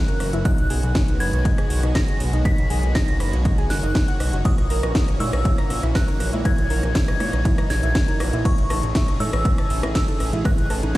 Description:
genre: progressive house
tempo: 120 BPM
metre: 4/4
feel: straight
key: F# mixolydian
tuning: A4 = 439 Hz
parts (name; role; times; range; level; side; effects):
- glassy synth bell; melody; 0.0-11.0 s; C#6 to B6; -30 LUFS; left 1 dB; chorus, ping-pong delay
- supersaw pad; sustained chords; 0.0-11.0 s; D#3 to G#4; -32 LUFS; right 2 dB; vintage 12-bit sampler grit, sidechain pumping
- twinkling granular texture; texture; 0.0-11.0 s; D#4 to C#5; -35 LUFS; right 1 dB; built-in reverb, sidechain pumping
- soft round pluck; arpeggios; 0.1-11.0 s; D#4 to A#6; -31 LUFS; right 1 dB; lush chorus, sidechain pumping, ping-pong delay
- house drum kit; drums; 0.1-11.0 s; hi-hat, ride cymbal, rim click, snare drum; -30 LUFS; equal; overdrive
- fat analog bass; bass; 0.2-10.9 s; F#1 to A#2; -23 LUFS; equal; tube saturation, sidechain pumping
- electronic kick drum; drums; 0.5-11.0 s; none; -21 LUFS; equal; overdrive
- electronic rim click and congas; percussion; 4.6-11.0 s; none; -32 LUFS; equal; overdrive, sidechain pumping on snare, sidechain pumping on perc
room: digital ambience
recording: played on a big sound system in a bare room, large studio reverb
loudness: -18 LUFS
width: side -17 dB against mid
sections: 0.0-11.0 A section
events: none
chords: 0.5 B6; 4.5 F#7/A#; 8.5 Amaj7

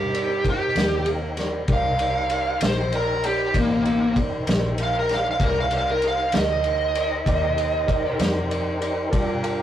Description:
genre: slow blues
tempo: 64 BPM (dotted quarters)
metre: 12/8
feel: straight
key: unclear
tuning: A4 = 440 Hz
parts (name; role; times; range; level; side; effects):
- smooth overdriven lead guitar; melody; 0.0-8.2 s; Bb3 to F5; -22 LUFS; right 1 dB; none
- tine electric piano; accompaniment; 0.0-9.6 s; Eb4 to F5; -30 LUFS; right 1 dB; medium stereo tremolo
- tonewheel organ; sustained chords; 0.0-9.6 s; C4 to C#5; -31 LUFS; equal; slow rotary speaker, chorus vibrato
- vintage muted fingered electric bass; bass; 0.0-9.6 s; A1 to G2; -29 LUFS; left 1 dB; none
- vintage drum kit; drums; 0.1-9.6 s; kick drum, ride cymbal, snare drum; -26 LUFS; equal; none
room: wet booth ambience, RT60 0.2 s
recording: rough rehearsal-room recording, warm saturation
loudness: -20 LUFS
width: side -11 dB against mid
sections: 0.0-9.6 A section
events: lead electric guitar solo 0.0-9.6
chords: 0.0 Cm7

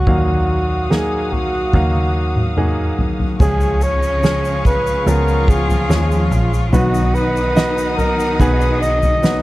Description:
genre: pop ballad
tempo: 72 BPM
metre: 4/4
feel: straight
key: unclear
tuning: A4 = 439 Hz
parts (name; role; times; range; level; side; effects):
- warm flugelhorn; melody; 0.0-9.4 s; F#4 to D#5; -20 LUFS; equal; slapback echo
- clear baby grand piano; accompaniment; 0.0-9.4 s; G#2 to E#5; -22 LUFS; right 1 dB; none
- warm studio string section; sustained chords; 0.0-9.4 s; B3 to D#6; -28 LUFS; left 1 dB; none
- vintage muted picked electric bass; bass; 0.0-9.4 s; A#1 to D#2; -19 LUFS; equal; none
- soft-mallet drum kit; drums; 0.1-9.4 s; crash cymbal, kick drum, snare drum, toms; -19 LUFS; equal; none
- clear chamber cello section; second line; 3.4-9.4 s; C#3 to E#4; -24 LUFS; left 2 dB; none
- tube shaker; percussion; 3.4-9.4 s; none; -40 LUFS; left 7 dB; none
room: little or no reverb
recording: dry, close 1970s-style studio recording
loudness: -14 LUFS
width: side -17 dB against mid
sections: 0.0-3.4 A section; 3.4-9.4 B section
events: drum fill 1.7-3.4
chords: 0.1 D#madd9; 3.4 C#; 6.7 B

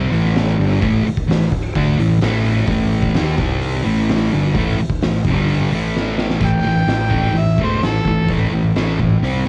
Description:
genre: garage rock duo or trio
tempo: 129 BPM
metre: 4/4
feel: straight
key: unclear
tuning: A4 = 439 Hz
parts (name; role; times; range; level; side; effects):
- fuzz guitar; riff; 0.0-9.5 s; G2 to D#4; -20 LUFS; equal; distortion, cassette tape
- fuzz fingered electric bass; bass; 0.0-9.4 s; E1 to D#2; -24 LUFS; equal; overdrive
- oversized low-tuned drum kit; drums; 0.1-9.3 s; crash cymbal, hi-hat, kick drum, snare drum; -24 LUFS; equal; cassette tape
- clear harmonica; melody; 6.5-8.3 s; A4 to G5; -24 LUFS; equal; overdrive, cassette tape
room: light reverb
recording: home recording on cassette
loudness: -17 LUFS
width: mono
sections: 0.0-6.4 A section; 6.4-9.5 B section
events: drum fill 5.9-6.4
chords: 0.1 A5; 3.4 C5; 3.8 A5; 5.2 G5; 5.7 A5

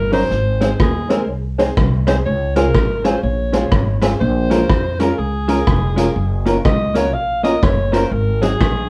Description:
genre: ska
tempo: 123 BPM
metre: 4/4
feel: swing 62% on 8ths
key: Db major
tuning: A4 = 439 Hz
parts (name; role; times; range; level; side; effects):
- clear alto saxophone; melody; 0.0-8.9 s; Ab4 to F5; -24 LUFS; equal; none
- upright bass; bass; 0.0-8.9 s; F1 to F2; -22 LUFS; equal; none
- vintage hollow-body jazz guitar; accompaniment; 0.1-8.5 s; Gb3 to Bb4; -23 LUFS; equal; none
- honky-tonk upright piano; stabs; 0.1-8.6 s; C4 to C5; -24 LUFS; equal; none
- vintage drum kit; drums; 0.1-8.7 s; hi-hat, kick drum, rim click; -21 LUFS; equal; none
room: moderate small room reverb, RT60 0.5 s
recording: band playing live in one room, cassette tape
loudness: -17 LUFS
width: mono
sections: 0.0-8.9 A section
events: alto saxophone solo 0.0-8.9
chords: 0.3 Ab; 2.3 Dbmaj7; 4.2 Bbm7; 6.2 Gbmaj7; 8.1 Ab7

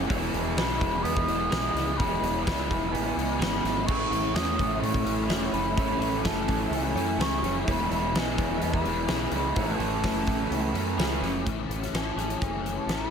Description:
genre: rock, shoegaze and dream pop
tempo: 127 BPM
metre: 4/4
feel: straight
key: A lydian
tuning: A4 = 435 Hz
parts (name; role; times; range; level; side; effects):
- hollow soft pad; sustained chords; 0.0-13.1 s; A3 to E5; -36 LUFS; equal; chorus
- direct-recorded clean electric guitar; arpeggios; 0.0-13.1 s; E3 to G#4; -37 LUFS; right 13 dB; lush chorus, analog delay
- raw garage guitar; riff; 0.0-13.1 s; A2 to E4; -32 LUFS; left 10 dB; overdrive, ensemble chorus
- raw garage guitar; riff; 0.0-11.5 s; E2 to E4; -33 LUFS; right 14 dB; overdrive, reverse reverb
- growling fingered electric bass; bass; 0.0-13.1 s; E1 to A2; -33 LUFS; equal; overdrive
- huge arena drum kit; drums; 0.1-13.0 s; crash cymbal, hi-hat, kick drum, snare drum; -30 LUFS; equal; none
- mellow hollow concert flute; melody; 0.6-13.1 s; G#5 to D#6; -32 LUFS; equal; analog delay
room: light reverb, studio reverb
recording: none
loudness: -24 LUFS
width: side -7 dB against mid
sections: 0.0-11.5 A section; 11.5-13.1 B section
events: none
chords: 0.1 Emaj7; 3.9 Amaj7; 7.7 Emaj7; 9.6 Amaj9; 11.5 Amaj7

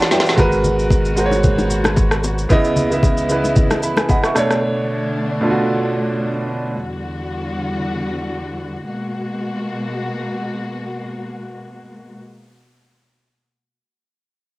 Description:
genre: amapiano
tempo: 113 BPM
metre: 4/4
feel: swing 55% on 16ths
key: G# minor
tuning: A4 = 440 Hz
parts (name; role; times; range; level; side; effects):
- clear grand piano; accompaniment; 0.0-6.8 s; B2 to C#6; -18 LUFS; right 1 dB; cassette tape
- warm symphonic string section; sustained chords; 0.0-12.2 s; C#2 to F#5; -25 LUFS; left 1 dB; sidechain pumping, cassette tape
- smooth R&B drum kit; drums; 0.0-4.6 s; kick drum, rim click, shaker, snare drum; -17 LUFS; equal; cassette tape
- bongos and congas; percussion; 0.1-4.5 s; none; -24 LUFS; left 1 dB; none
- round analog bass; bass; 0.4-2.5 s; G#1; -21 LUFS; equal; none
room: light reverb, studio reverb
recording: home recording on cassette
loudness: -16 LUFS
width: side -20 dB against mid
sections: 0.4-8.9 A section; 8.9-13.1 B section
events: drum fill 0.0-0.4; grand piano fill 0.0-0.4, 3.6-4.6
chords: 0.4 G#m9; 2.5 C#m9; 4.4 Bm9; 6.7 Em9; 8.9 G#m9

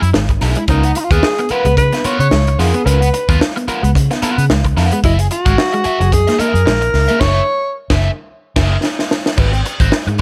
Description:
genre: funk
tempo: 110 BPM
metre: 4/4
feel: swing 56% on 16ths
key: unclear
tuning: A4 = 439 Hz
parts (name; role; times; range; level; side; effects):
- overdriven electric guitar; accompaniment; 0.0-10.2 s; Cb4 to Gb5; -24 LUFS; equal; wah
- vintage muted fingered electric bass; bass; 0.0-10.2 s; Gb1 to Db3; -17 LUFS; equal; none
- crisp fusion drum kit; drums; 0.0-10.2 s; crash cymbal, hi-hat, kick drum, snare drum; -20 LUFS; equal; none
- semi-hollow electric guitar; riff; 0.1-7.2 s; Gb3 to Db4; -25 LUFS; equal; analog chorus
- clear alto saxophone; melody; 0.7-7.7 s; Eb4 to Db5; -19 LUFS; equal; none
room: light reverb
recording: none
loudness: -14 LUFS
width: mono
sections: 0.0-9.4 A section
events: band accent 7.2-9.4; drum fill 8.8-9.4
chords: 0.0 Gb9; 0.7 Db13; 5.0 Gb9; 9.4 Ab7#9

